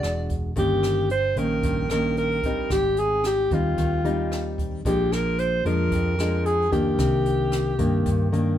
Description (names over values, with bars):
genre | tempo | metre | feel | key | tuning
bossa nova | 112 BPM | 4/4 | straight | unclear | A4 = 439 Hz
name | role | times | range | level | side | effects
breathy alto saxophone | melody | 0.0-8.6 s | F4 to D5 | -24 LUFS | equal | none
nylon-string guitar | accompaniment | 0.0-8.6 s | F2 to F#4 | -26 LUFS | left 2 dB | none
hollow-body short-scale fingered electric bass | bass | 0.0-8.6 s | E1 to G2 | -27 LUFS | right 1 dB | none
jazz brush drum kit | drums | 0.0-8.5 s | hi-hat, kick drum, rim click | -32 LUFS | right 1 dB | none
room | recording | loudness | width
light reverb | none | -21 LUFS | side -11 dB against mid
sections
0.0-8.6 A section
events
none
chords
0.0 E9; 0.6 Eb7/G; 2.7 Abmaj7; 4.8 Bb7; 7.0 Cm9